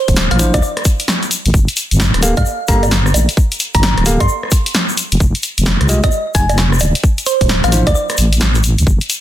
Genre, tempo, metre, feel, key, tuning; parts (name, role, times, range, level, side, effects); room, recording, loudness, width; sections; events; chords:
UK garage, two-step garage; 131 BPM; 4/4; swing 64% on 16ths; G dorian; A4 = 445 Hz
thumb-piano-like synth pluck; melody; 0.0-8.0 s; C5 to C6; -20 LUFS; right 2 dB; chorus, phaser, ping-pong delay
deep soft wobble bass; bass; 0.1-9.0 s; D1 to G2; -14 LUFS; equal; chorus
electronic kick drum; drums; 0.1-9.0 s; -14 LUFS; equal
punchy analog drum machine; drums; 0.1-9.2 s; bongos, hi-hat, rim click, snare drum; -17 LUFS; equal
tube shaker; percussion; 0.1-9.2 s; -24 LUFS; left 4 dB
bell-like tine electric piano; stabs; 0.4-7.9 s; F3 to F5; -20 LUFS; equal; ping-pong delay
digital ambience; dense, heavily limited modern master; -12 LUFS; side -12 dB against mid
0.0-9.2 A section
kick drops out 8.0-8.9
0.0 Dm9; 1.5 Gm9; 5.0 N.C.; 6.8 D5